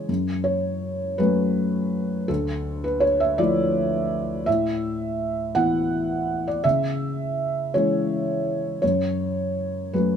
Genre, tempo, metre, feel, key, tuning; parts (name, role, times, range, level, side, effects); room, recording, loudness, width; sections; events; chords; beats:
neoclassical minimalist piano; 55 BPM (dotted quarters); 6/8; rubato; A4 = 440 Hz
felt-muted upright piano; solo; 0.0-10.2 s; D2 to F#5; -21 LUFS; equal
light reverb; minimal, uncompressed stereo recording; -21 LUFS; side -7 dB against mid
0.0-10.2 A section
0.1 F#m; 2.3 Dmadd9; 4.5 Asus2; 6.6 C#m; 8.8 F#m
| 0.09 1.19 | 2.29 3.38 | 4.47 5.55 | 6.64 7.72 | 8.82 9.93